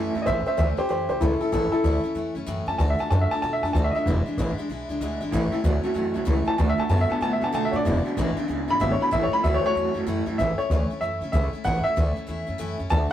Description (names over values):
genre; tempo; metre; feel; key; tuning
rockabilly; 190 BPM; 4/4; swing 63% on 8ths; A major; A4 = 439 Hz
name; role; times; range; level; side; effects
picked steel-string acoustic guitar; accompaniment; 0.0-13.1 s; E2 to F#4; -31 LUFS; left 2 dB; none
electric guitar through a small old amp; riff; 0.0-0.3, 5.3-10.4 s; E2 to B3; -27 LUFS; right 1 dB; tremolo
upright bass; bass; 0.0-13.1 s; E1 to B2; -25 LUFS; equal; none
warm upright piano; melody; 0.2-13.1 s; E4 to B5; -25 LUFS; equal; none
room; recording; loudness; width
light reverb; rough rehearsal-room recording; -22 LUFS; side -11 dB against mid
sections
0.3-10.4 A section; 10.4-13.1 B section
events
upright piano solo 0.3-10.4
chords
0.3 A; 2.8 D; 4.1 E7; 5.3 A; 6.6 D; 7.9 E7; 9.1 A